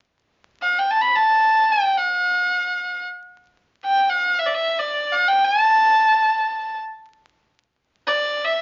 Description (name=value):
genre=arabic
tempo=free time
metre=none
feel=none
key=unclear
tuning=A4 = 440 Hz
part: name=clear violin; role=solo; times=0.6-8.6 s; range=D5 to B5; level=-19 LUFS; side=equal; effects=none
room=moderate club reverb, RT60 0.7 s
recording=very old 78 rpm record, vinyl crackle, nothing above 7.5 kHz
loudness=-19 LUFS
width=mono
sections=0.1-8.6 A section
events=none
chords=none